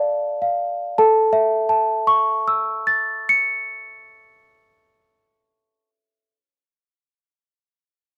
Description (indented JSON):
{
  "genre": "classical, lullaby for celesta",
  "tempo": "52 BPM",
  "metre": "3/4",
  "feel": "straight",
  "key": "A major",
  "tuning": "A4 = 440 Hz",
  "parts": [
    { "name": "celesta", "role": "solo", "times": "0.0-6.7 s", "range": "A4 to C#7", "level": "-20 LUFS", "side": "equal", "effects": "none" }
  ],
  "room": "little or no reverb",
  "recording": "none",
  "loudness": "-19 LUFS",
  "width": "mono",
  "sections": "1.0-4.4 A section",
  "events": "none",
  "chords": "0.0 Dm/A; 1.0 A",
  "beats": "| 0.97 2.12 3.27"
}